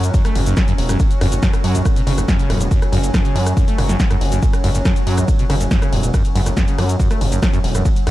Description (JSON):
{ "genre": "driving peak-time techno", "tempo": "140 BPM", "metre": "4/4", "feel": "straight", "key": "unclear", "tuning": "A4 = 440 Hz", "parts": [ { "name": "gritty driven synth bass", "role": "bass", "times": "0.0-8.1 s", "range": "E1 to F#2", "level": "-18 LUFS", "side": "equal", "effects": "sidechain pumping" }, { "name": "analog drone", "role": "drone", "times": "0.0-8.1 s", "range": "F#3 to C#4", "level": "-26 LUFS", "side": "equal", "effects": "chorus, sidechain pumping" }, { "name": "punchy analog drum machine", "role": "drums", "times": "0.0-8.1 s", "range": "hi-hat, ride cymbal, rim click, shaker, snare drum", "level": "-24 LUFS", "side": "equal", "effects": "sidechain pumping on hats, sidechain pumping on cymbals, sidechain pumping on perc" }, { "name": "acid bass, saw", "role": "riff", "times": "0.1-8.1 s", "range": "F#1 to A3", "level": "-22 LUFS", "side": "equal", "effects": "lush chorus, sidechain pumping" }, { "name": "electronic kick drum", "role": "drums", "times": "0.1-7.9 s", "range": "none", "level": "-17 LUFS", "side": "equal", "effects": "none" } ], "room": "light reverb", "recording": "dark, warm production", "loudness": "-14 LUFS", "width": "side -16 dB against mid", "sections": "0.0-8.1 A section", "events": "none", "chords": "0.0 F#5" }